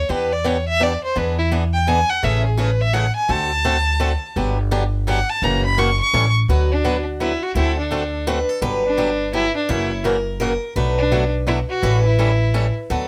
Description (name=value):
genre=acoustic string swing (jazz manouche)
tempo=169 BPM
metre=3/4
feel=swing 61% on 8ths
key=D major from 6.5 s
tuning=A4 = 444 Hz
part: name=dark violin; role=melody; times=0.0-12.7 s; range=D4 to C#6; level=-24 LUFS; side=equal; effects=none
part: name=upright bass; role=bass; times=0.0-13.1 s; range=F#1 to E2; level=-23 LUFS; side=equal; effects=none
part: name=picked swing-style acoustic guitar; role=accompaniment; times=0.1-13.1 s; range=B2 to B4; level=-26 LUFS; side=equal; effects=none
part: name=picked steel-string acoustic guitar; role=second line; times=6.5-13.1 s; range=F#4 to C#5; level=-26 LUFS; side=equal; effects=none
room=light reverb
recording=close, detailed microphones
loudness=-19 LUFS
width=mono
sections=0.0-6.5 A section; 6.5-13.1 B section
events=violin solo 0.0-6.5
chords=0.1 Em7; 1.2 E7; 2.2 Amaj7; 3.3 D7; 4.4 Gmaj7; 5.4 F#7; 6.1 A7; 6.5 D6; 7.6 D7; 8.6 Gmaj7; 9.7 F#7; 10.8 Bm7; 11.8 A7